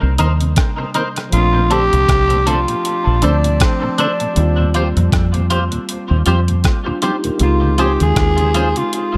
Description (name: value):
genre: lovers rock reggae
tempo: 79 BPM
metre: 4/4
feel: swing 57% on 16ths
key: Bb major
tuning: A4 = 440 Hz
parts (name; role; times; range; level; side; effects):
- barky tine electric piano; accompaniment; 0.0-9.2 s; C3 to Bb4; -25 LUFS; equal; none
- mellow tonewheel organ; accompaniment; 0.0-9.2 s; Eb2 to Db4; -28 LUFS; equal; none
- deep dub fingered electric bass; bass; 0.0-9.2 s; Bb1 to F2; -18 LUFS; equal; none
- twangy electric guitar; stabs; 0.2-8.7 s; D4 to C5; -25 LUFS; equal; analog chorus, dub echo
- detuned 8-bit digital drum machine; drums; 0.2-9.1 s; hi-hat, kick drum, rim click; -20 LUFS; equal; none
- raspy tenor saxophone; melody; 1.3-9.2 s; C4 to Ab4; -21 LUFS; equal; dub echo
room: light reverb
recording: none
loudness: -16 LUFS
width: mono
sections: 0.0-9.2 A section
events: none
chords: 0.0 Cm7; 1.3 Bbmaj9; 4.4 Eb69; 7.4 Dbmaj7